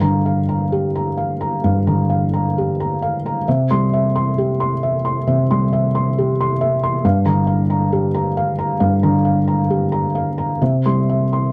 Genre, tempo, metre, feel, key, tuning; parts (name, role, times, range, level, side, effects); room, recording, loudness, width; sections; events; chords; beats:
neoclassical minimalist piano; 67 BPM; 4/4; rubato; G dorian; A4 = 440 Hz
felt-muted upright piano; solo; 0.0-11.5 s; G2 to C6; -18 LUFS; equal
light reverb; dry, close 1970s-style studio recording; -18 LUFS; mono
0.0-11.5 A section
0.0 Gm7; 3.5 C; 7.0 Gm7; 10.6 C
0.73 1.64 2.56 | 3.46 4.36 5.26 6.16 | 7.04 7.92 8.81 9.69 | 10.60